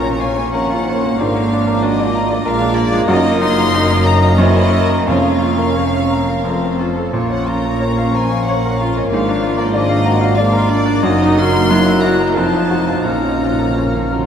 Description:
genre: classical, romantic movement for piano and orchestra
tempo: 84-99 BPM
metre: 3/4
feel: rubato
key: Bb minor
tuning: A4 = 436 Hz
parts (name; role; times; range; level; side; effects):
- bright baby grand piano; melody; 0.0-14.3 s; F2 to Bb5; -19 LUFS; left 1 dB; none
- warm chamber violin section; melody; 0.0-14.3 s; C5 to C6; -24 LUFS; equal; none
- bright silver concert flute; second line; 0.0-14.3 s; C6 to Gb6; -25 LUFS; left 4 dB; none
- mellow clarinet; second line; 0.0-14.3 s; A3 to Fb4; -24 LUFS; right 4 dB; none
- warm symphonic violin section; second line; 0.0-14.3 s; Ab3 to Db5; -24 LUFS; left 2 dB; none
- dark bassoon; accompaniment; 0.0-14.3 s; Bb3 to Gb4; -24 LUFS; right 2 dB; none
- dark symphonic viola section; accompaniment; 0.0-14.3 s; D3 to Fb4; -24 LUFS; right 4 dB; none
- rich symphonic double bass section; bass; 0.0-14.3 s; F1 to Bb1; -22 LUFS; equal; none
- warm chamber cello section; bass; 0.0-14.3 s; F2 to Bb2; -23 LUFS; equal; none
- timpani; percussion; 0.0-0.2, 5.1-8.1, 13.1-14.3 s; F2 to Bb2; -31 LUFS; right 2 dB; none
- mellow French horn section; sustained chords; 1.2-14.3 s; A3 to Fb4; -24 LUFS; left 1 dB; none
- mellow trombone section; sustained chords; 1.2-14.3 s; F2 to Gb3; -26 LUFS; right 1 dB; none
room: wet cathedral reverb, RT60 6.1 s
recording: in a vast, echoing space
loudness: -13 LUFS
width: side -8 dB against mid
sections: 0.0-14.3 A section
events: timpani fill 13.1-14.3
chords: 0.0 Bbm; 1.2 Bb7/Ab; 3.1 Ebm/Gb; 4.4 Gb7; 5.1 Bbm/F; 6.5 F; 7.1 Bbm; 9.1 Bb7/Ab; 11.0 Ebm/Gb; 11.7 Gb7; 12.4 F7b9; 13.1 Bbm

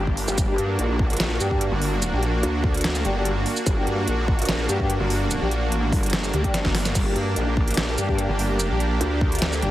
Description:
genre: heavy wobble dubstep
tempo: 146 BPM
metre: 4/4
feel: half-time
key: G harmonic minor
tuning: A4 = 436 Hz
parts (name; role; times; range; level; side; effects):
- supersaw pad; sustained chords; 0.0-9.7 s; Bb3 to G4; -27 LUFS; right 1 dB; sidechain pumping
- snarling distorted saw bass; bass; 0.0-9.7 s; G1 to D2; -24 LUFS; equal; distortion, overdrive
- electronic kick drum; drums; 0.1-9.3 s; none; -24 LUFS; equal; none
- dubstep drum kit; drums; 0.2-9.7 s; crash cymbal, hi-hat, shaker, snare drum; -27 LUFS; right 1 dB; none
- growl bass; bass; 0.3-9.6 s; G1 to G2; -25 LUFS; equal; chorus, overdrive
- warm brass ensemble; stabs; 0.5-9.7 s; G3 to G4; -31 LUFS; left 3 dB; digital delay
room: light reverb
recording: heavily compressed radio sound, multiband compression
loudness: -20 LUFS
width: side -14 dB against mid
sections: 0.0-9.7 A section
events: drum fill 6.5-7.0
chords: 0.0 Gm

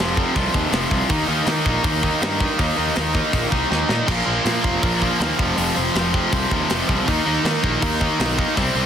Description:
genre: punk rock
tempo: 161 BPM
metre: 4/4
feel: straight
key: unclear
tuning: A4 = 438 Hz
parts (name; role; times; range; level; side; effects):
- distorted electric guitar; riff; 0.0-8.9 s; F2 to Eb4; -24 LUFS; right 14 dB; overdrive
- tight distorted guitar; riff; 0.0-8.9 s; F2 to Eb4; -22 LUFS; left 7 dB; distortion
- fuzz picked electric bass; bass; 0.0-8.9 s; F1 to Eb3; -25 LUFS; equal; overdrive
- tight metal drum kit; drums; 0.0-8.7 s; crash cymbal, hi-hat, kick drum, snare drum; -24 LUFS; equal; none
- high-gain distorted guitar; riff; 4.1-8.9 s; F2 to Eb4; -26 LUFS; right 2 dB; distortion
room: little or no reverb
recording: dense, heavily limited modern master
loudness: -17 LUFS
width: side -8 dB against mid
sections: 0.0-8.9 A section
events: drum fill 3.7-4.1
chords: 0.0 F5; 1.1 Eb5; 4.1 Bb5; 5.4 F5; 7.1 Eb5

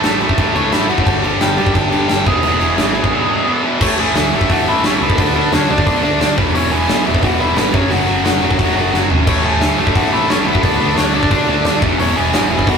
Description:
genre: punk rock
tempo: 176 BPM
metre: 4/4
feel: straight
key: A major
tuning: A4 = 440 Hz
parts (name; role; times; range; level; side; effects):
- nasal lead guitar with a parked wah; melody; 0.0-12.8 s; B3 to A5; -20 LUFS; left 1 dB; overdrive
- tight distorted guitar; riff; 0.0-12.8 s; E2 to D4; -16 LUFS; equal; distortion
- growling picked electric bass; bass; 0.0-12.8 s; E1 to A2; -23 LUFS; equal; overdrive
- big rock drum kit; drums; 0.0-12.8 s; crash cymbal, hi-hat, kick drum, snare drum, toms; -17 LUFS; right 1 dB; none
room: moderate booth ambience, RT60 0.2 s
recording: rough rehearsal-room recording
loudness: -12 LUFS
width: side -6 dB against mid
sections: 0.0-3.8 A section; 3.8-12.8 B section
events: drum fill 8.9-9.3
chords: 0.0 A; 1.1 G5; 2.3 E; 3.8 A; 5.2 D5; 6.4 E; 7.7 F#5; 9.3 A; 10.6 D5; 11.8 E

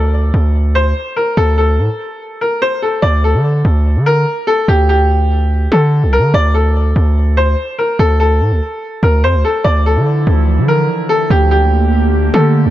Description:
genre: hip hop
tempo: 145 BPM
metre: 4/4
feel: half-time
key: D minor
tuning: A4 = 440 Hz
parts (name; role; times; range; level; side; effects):
- bright upright piano; melody; 0.0-12.7 s; G4 to D5; -15 LUFS; left 1 dB; low-pass filter, digital delay
- distorted 808-style bass; bass; 0.0-12.7 s; C2 to D3; -12 LUFS; equal; distortion
- warbly tape-like pad; sustained chords; 9.6-12.7 s; D3 to G4; -18 LUFS; right 2 dB; chorus, built-in reverb
room: light reverb, small room reverb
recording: dark, warm production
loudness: -11 LUFS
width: side -13 dB against mid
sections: 0.0-3.0 A section; 3.0-12.7 B section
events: stop 2.2-3.0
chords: 0.0 D5; 1.4 Bbmaj7/D (rootless); 3.0 D5; 4.7 Gsus2/D; 6.3 D5; 9.6 Dmadd9; 11.3 Gmadd9/D

